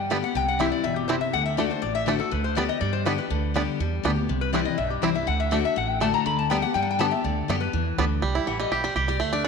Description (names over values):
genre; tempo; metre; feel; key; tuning
bluegrass; 244 BPM; 4/4; straight; G major; A4 = 440 Hz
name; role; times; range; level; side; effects
picked steel-string acoustic guitar; accompaniment; 0.0-9.5 s; G2 to F#5; -27 LUFS; left 10 dB; none
upright bass; bass; 0.0-9.5 s; G1 to G2; -29 LUFS; right 3 dB; none
bluegrass banjo; melody; 0.1-9.5 s; E3 to G4; -29 LUFS; right 5 dB; none
lap resonator guitar; second line; 0.2-7.9 s; G4 to B5; -27 LUFS; left 5 dB; none
room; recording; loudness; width
moderate echo chamber reverb, RT60 2.1 s; 1960s-style stereo; -22 LUFS; side -5 dB against mid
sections
0.0-8.2 A section; 8.2-9.5 A section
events
resonator guitar played with a steel bar solo 0.0-8.2; steel-string acoustic guitar solo 8.2-9.5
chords
0.4 C; 1.3 D; 2.3 G/D; 4.3 C; 5.3 D; 6.3 G/D; 8.2 C